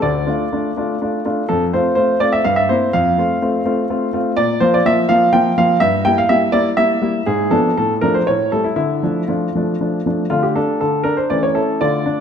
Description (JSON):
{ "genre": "classical-period piano sonatina", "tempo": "123 BPM", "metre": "3/4", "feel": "rubato", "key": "D minor", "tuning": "A4 = 438 Hz", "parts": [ { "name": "clear grand piano", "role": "solo", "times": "0.0-12.2 s", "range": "D2 to G5", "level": "-14 LUFS", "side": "equal", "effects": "none" } ], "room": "wet recital hall reverb, RT60 1.7 s", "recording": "none", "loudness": "-14 LUFS", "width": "side -7 dB against mid", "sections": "0.0-10.3 A section; 10.3-12.2 A section", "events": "none", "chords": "0.0 Dm; 1.5 F; 2.5 C7/G; 2.9 F; 4.4 Bb5; 5.8 Edim/G; 7.3 G#dim7; 7.8 Dm/A; 8.3 A7; 8.8 Dm; 10.3 D5; 11.3 A/E" }